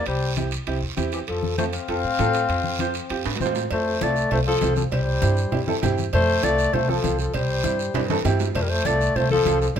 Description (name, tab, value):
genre	latin, cumbia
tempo	198 BPM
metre	4/4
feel	straight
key	F major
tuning	A4 = 440 Hz
part	mellow clarinet	melody	0.0-9.8 s	G4 to F5	-24 LUFS	left 1 dB	none
part	bright trombone	second line	0.0-9.8 s	E3 to C4	-28 LUFS	left 4 dB	none
part	upright bass	bass	0.1-9.8 s	C2 to A2	-26 LUFS	equal	none
part	guiro	percussion	0.1-9.8 s	none	-35 LUFS	right 7 dB	none
part	timbales and cowbell	percussion	0.1-9.8 s	none	-33 LUFS	right 5 dB	none
part	clear upright piano	accompaniment	0.4-9.7 s	C4 to C5	-27 LUFS	right 4 dB	none
part	congas	percussion	0.4-9.8 s	none	-30 LUFS	left 3 dB	none
room	light reverb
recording	minimal, uncompressed stereo recording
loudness	-20 LUFS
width	side -8 dB against mid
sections	0.0-3.7 A section; 3.7-9.8 B section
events	drum fill 3.2-3.7, 7.9-8.6; upright piano fill 3.2-3.7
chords	0.0 C; 1.3 F; 4.9 C; 6.1 F; 7.3 C; 8.6 F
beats	| 0.06 0.37 0.67 0.97 | 1.28 1.58 1.88 2.19 | 2.49 2.79 3.10 3.40 | 3.70 4.01 4.31 4.61 | 4.92 5.22 5.52 5.83 | 6.13 6.43 6.74 7.04 | 7.34 7.64 7.95 8.25 | 8.55 8.86 9.16 9.46 | 9.77